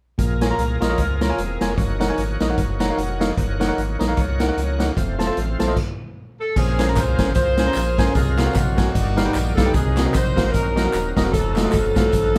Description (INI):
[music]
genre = uptempo gospel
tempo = 151 BPM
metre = 4/4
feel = swing 58% on 8ths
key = Bb minor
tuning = A4 = 441 Hz
[part]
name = bell-like tine electric piano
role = accompaniment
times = 0.2-12.4 s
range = G2 to Bb5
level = -26 LUFS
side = equal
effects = none
[part]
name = bright tonewheel organ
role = sustained chords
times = 0.2-12.4 s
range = Gb3 to Gb5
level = -32 LUFS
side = equal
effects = slow rotary speaker, overdrive, chorus vibrato
[part]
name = sub bass with octave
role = bass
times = 0.2-12.4 s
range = Eb1 to Db2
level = -26 LUFS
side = equal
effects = none
[part]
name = swinging big-band drum kit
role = drums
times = 0.2-12.4 s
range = crash cymbal, hi-hat, kick drum, snare drum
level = -24 LUFS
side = equal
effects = none
[part]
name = clean electric guitar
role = second line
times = 1.0-1.8, 4.2-5.0 s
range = F3 to Db5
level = -35 LUFS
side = equal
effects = spring reverb
[part]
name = warm horn section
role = melody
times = 6.4-12.4 s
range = Bb3 to C5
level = -26 LUFS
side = equal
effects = none
[part]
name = tambourine and handclaps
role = percussion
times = 6.6-12.4 s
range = none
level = -38 LUFS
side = equal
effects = none
[sound]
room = moderate studio ambience, RT60 0.5 s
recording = band playing live in one room, faint mains hum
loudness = -20 LUFS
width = mono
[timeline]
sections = 0.2-6.6 A section; 6.6-12.4 B section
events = tine electric piano fill 2.6-3.4; stop 5.8-6.6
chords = 0.2 Bbm7; 1.8 Gb6; 3.4 Ebm7/Gb; 5.0 F; 6.6 Bbm9; 8.2 Ab13/C; 8.9 G7b13; 9.7 Cm7b5; 11.3 F7b9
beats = | 0.19 0.59 0.99 1.39 | 1.78 2.18 2.58 2.98 | 3.38 3.77 4.17 4.57 | 4.97 5.37 5.77 6.17 | 6.56 6.96 7.36 7.76 | 8.15 8.55 8.95 9.35 | 9.74 10.14 10.54 10.94 | 11.34 11.73 12.13